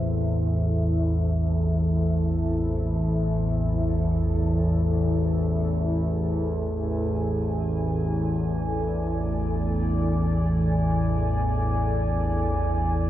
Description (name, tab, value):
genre	dark ambient drone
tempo	free time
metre	none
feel	none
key	A harmonic minor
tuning	A4 = 437 Hz
part	deep dark ambient pad	sustained chords	0.0-13.1 s	E4 to G#5	-30 LUFS	equal	chorus, built-in reverb
part	analog drone	drone	0.0-13.1 s	A1 to E2	-23 LUFS	equal	lush chorus
room	wet huge ambient reverb, RT60 8.2 s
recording	worn, warbling old tape, cassette tape, warbly pitch drift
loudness	-22 LUFS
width	side -13 dB against mid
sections	0.0-13.1 A section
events	fade-in on ambient pad 0.0-13.1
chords	0.0 Am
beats	free time